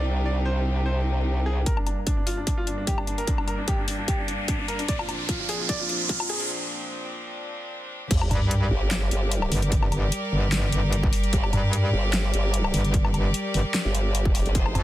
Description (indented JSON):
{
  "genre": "heavy wobble dubstep",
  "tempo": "149 BPM",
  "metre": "4/4",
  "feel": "swing 53% on 16ths, half-time",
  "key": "G minor",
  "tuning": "A4 = 440 Hz",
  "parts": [
    { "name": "bright grand piano", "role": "melody", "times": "0.0-6.5 s", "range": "D4 to D5", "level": "-32 LUFS", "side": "equal", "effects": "low-pass filter, digital delay" },
    { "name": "bright chamber string section", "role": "sustained chords", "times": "0.0-14.8 s", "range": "G2 to D5", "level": "-31 LUFS", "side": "left 1 dB", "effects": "sidechain pumping, low-pass filter" },
    { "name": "formant-sweep wobble bass", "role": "bass", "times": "0.0-1.6, 8.1-14.7 s", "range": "F1 to C2", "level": "-24 LUFS", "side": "equal", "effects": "chorus, overdrive" },
    { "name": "dubstep drum kit", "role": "drums", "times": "1.7-14.8 s", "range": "crash cymbal, handclaps, hi-hat, snare drum, woodblock", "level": "-30 LUFS", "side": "left 2 dB", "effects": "none" },
    { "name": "electronic kick drum", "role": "drums", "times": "1.7-14.6 s", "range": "none", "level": "-25 LUFS", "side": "equal", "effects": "distortion" },
    { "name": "riser and sub drop", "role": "sound effects", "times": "3.2-9.7 s", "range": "none", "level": "-30 LUFS", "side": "right 1 dB", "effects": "none" },
    { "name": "metallic wobble bass", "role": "bass", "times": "8.3-14.8 s", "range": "G1 to G2", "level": "-23 LUFS", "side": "equal", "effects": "chorus, overdrive" }
  ],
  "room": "little or no reverb",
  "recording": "dense, heavily limited modern master, high-pass filter",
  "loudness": "-22 LUFS",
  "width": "side -14 dB against mid",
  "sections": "0.0-1.7 A section; 1.7-8.1 B section; 8.1-14.8 C section",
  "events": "build-up 1.7-8.1; filter sweep on string section 1.7-8.1; filter sweep 1.7-8.1; riser 3.2-6.5; drum fill 4.9-6.5; break 6.5-8.1; drop 8.1-14.8; impact 8.1-9.7",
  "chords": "0.0 Cmadd9; 1.7 Gm; 4.9 Bbadd9; 8.1 Gm"
}